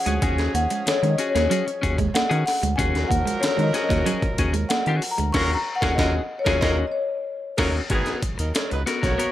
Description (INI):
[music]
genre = funk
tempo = 94 BPM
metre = 4/4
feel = straight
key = Eb minor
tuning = A4 = 440 Hz
[part]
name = marimba with medium hard mallets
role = melody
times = 0.0-7.9 s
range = Db5 to Db6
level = -26 LUFS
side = left 3 dB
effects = none
[part]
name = warm horn section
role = second line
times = 0.0-9.3 s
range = Eb3 to Db5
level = -30 LUFS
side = right 2 dB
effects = none
[part]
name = clean electric guitar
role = accompaniment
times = 0.1-9.3 s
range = Cb4 to Bb4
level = -27 LUFS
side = left 4 dB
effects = none
[part]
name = semi-hollow electric guitar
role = riff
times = 0.1-5.3 s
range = Gb3 to Bb3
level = -27 LUFS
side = right 8 dB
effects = none
[part]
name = round analog bass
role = bass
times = 0.1-9.2 s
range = Ab1 to Eb3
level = -24 LUFS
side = equal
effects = none
[part]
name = breakbeat sampler-style drum kit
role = drums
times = 0.1-9.3 s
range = crash cymbal, hi-hat, kick drum, snare drum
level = -26 LUFS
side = equal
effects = overdrive
[sound]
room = little or no reverb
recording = none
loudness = -20 LUFS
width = side -13 dB against mid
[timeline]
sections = 0.0-7.9 A section; 7.9-9.3 B section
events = marimba solo 0.0-7.9; band accent 5.3-7.9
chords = 0.0 Ebm11; 7.9 Abm9 (rootless)